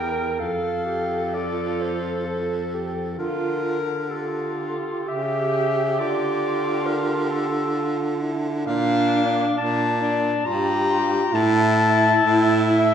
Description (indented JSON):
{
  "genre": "classical, lyrical piece for single-reed quartet",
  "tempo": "66 BPM",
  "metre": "3/4",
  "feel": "uneven beats, rubato",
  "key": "unclear",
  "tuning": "A4 = 440 Hz",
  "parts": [
    { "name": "warm clarinet", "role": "melody", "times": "0.0-12.9 s", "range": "A4 to Bb5", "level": "-24 LUFS", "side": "left 4 dB", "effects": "none" },
    { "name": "mellow alto saxophone", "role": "second line", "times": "0.0-12.9 s", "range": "D4 to Bb4", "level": "-26 LUFS", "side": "right 4 dB", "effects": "none" },
    { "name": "warm tenor saxophone", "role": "accompaniment", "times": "0.0-12.9 s", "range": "D4 to Bb4", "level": "-28 LUFS", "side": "left 1 dB", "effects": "none" },
    { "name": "clear baritone saxophone", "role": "bass", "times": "0.0-12.9 s", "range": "E2 to D3", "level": "-25 LUFS", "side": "right 1 dB", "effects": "none" }
  ],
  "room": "wet recital hall reverb, RT60 1.5 s",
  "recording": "heard from further back in the room",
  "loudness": "-20 LUFS",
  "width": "side -8 dB against mid",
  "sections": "0.0-12.9 A section",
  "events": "none",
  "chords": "0.4 F; 3.2 Dm; 5.1 C#dim; 6.0 Dm; 8.7 Bb; 10.4 Gm7; 11.3 A5"
}